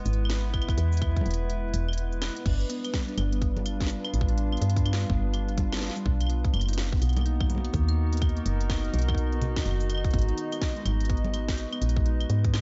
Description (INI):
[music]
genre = IDM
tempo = 125 BPM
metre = 4/4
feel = swing 62% on 16ths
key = unclear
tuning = A4 = 441 Hz
[part]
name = warbly tape-like pad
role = sustained chords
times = 0.0-12.6 s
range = G3 to F5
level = -38 LUFS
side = equal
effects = chorus, built-in reverb
[part]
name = woody FM bass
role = bass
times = 0.1-12.6 s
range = E1 to Ab2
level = -29 LUFS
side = equal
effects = none
[part]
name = organic electronic drum kit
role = drums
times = 0.1-12.6 s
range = cabasa, claves, congas, crash cymbal, hi-hat, snare drum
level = -37 LUFS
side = equal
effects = tape echo
[part]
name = electronic kick drum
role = drums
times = 0.5-12.5 s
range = none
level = -30 LUFS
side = equal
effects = none
[part]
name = harp-like synth pluck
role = arpeggios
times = 2.5-12.6 s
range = D#3 to D#4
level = -38 LUFS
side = equal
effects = chorus, digital delay
[sound]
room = little or no reverb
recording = nothing above 7.8 kHz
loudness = -27 LUFS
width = mono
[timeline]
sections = 0.0-2.5 A section; 2.5-12.6 A section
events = break 1.5-2.5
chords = 0.0 E; 2.5 G7; 6.3 Bmaj7; 10.1 Abm7